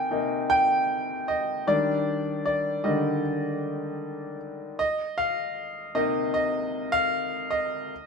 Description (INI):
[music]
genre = pop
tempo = 77 BPM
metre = 4/4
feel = straight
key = C minor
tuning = A4 = 437 Hz
[part]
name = bright grand piano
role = solo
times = 0.0-8.1 s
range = C3 to Ab5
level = -24 LUFS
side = left 1 dB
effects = none
[sound]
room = moderate studio ambience, RT60 0.5 s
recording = band playing live in one room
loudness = -24 LUFS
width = side -5 dB against mid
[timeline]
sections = 0.0-8.1 A section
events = grand piano solo 0.0-8.1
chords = 0.0 Cm7; 1.7 Ebmaj7; 4.8 Cm7